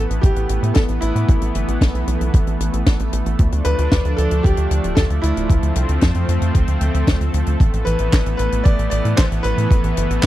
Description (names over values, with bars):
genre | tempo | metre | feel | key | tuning
italo disco | 114 BPM | 4/4 | straight | A minor | A4 = 438 Hz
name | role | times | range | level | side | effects
lush unison pad | sustained chords | 0.0-10.3 s | E3 to D4 | -24 LUFS | right 1 dB | chorus
tight sequencer bass | bass | 0.0-10.3 s | D1 to A2 | -19 LUFS | equal | none
tight funk drum kit | drums | 0.1-10.3 s | handclaps, hi-hat, snare drum | -24 LUFS | left 2 dB | none
clear concert grand piano | melody | 0.2-10.3 s | E4 to D5 | -24 LUFS | equal | tape echo
electronic kick drum | drums | 0.2-10.3 s | none | -15 LUFS | equal | none
room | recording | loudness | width
small room ambience | dry, close 1970s-style studio recording | -15 LUFS | side -14 dB against mid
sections
0.0-10.3 A section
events
none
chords
0.0 Asus2; 3.4 Dm; 7.6 Asus2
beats
0.23 0.76 | 1.28 1.81 2.34 2.86 | 3.39 3.92 4.44 4.97 | 5.50 6.02 6.55 7.08 | 7.60 8.13 8.65 9.18 | 9.71 10.23